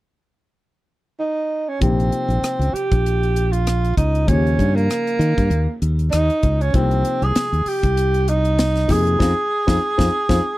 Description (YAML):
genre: electric jazz fusion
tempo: 98 BPM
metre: 4/4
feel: swing 56% on 16ths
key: Bb dorian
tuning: A4 = 440 Hz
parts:
  - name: breathy tenor saxophone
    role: melody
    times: 1.2-10.6 s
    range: Bb3 to Ab4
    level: -21 LUFS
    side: right 2 dB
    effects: none
  - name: dark grand piano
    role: accompaniment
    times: 1.8-10.4 s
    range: C3 to G5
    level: -25 LUFS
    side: left 3 dB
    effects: none
  - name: modern bright fingered electric bass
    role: bass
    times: 1.8-10.4 s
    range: Bb1 to Eb3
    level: -18 LUFS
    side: equal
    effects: none
  - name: crisp fusion drum kit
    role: drums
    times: 1.8-10.4 s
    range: hi-hat, kick drum, rim click, snare drum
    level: -22 LUFS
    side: equal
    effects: none
room: little or no reverb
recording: dry, close 1970s-style studio recording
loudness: -16 LUFS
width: side -17 dB against mid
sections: 0.0-1.8 A section; 1.8-10.6 B section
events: drum fill 9.2-10.6; band accent 9.2-10.6; grand piano fill 9.8-10.6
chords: 0.0 N.C.; 1.8 Bbm69; 4.3 Eb7; 6.7 Cm7; 8.9 Fm7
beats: 0.59 1.20 | 1.82 2.43 3.05 3.66 | 4.28 4.89 5.51 6.12 | 6.74 7.35 7.96 8.58 | 9.19 9.81 10.42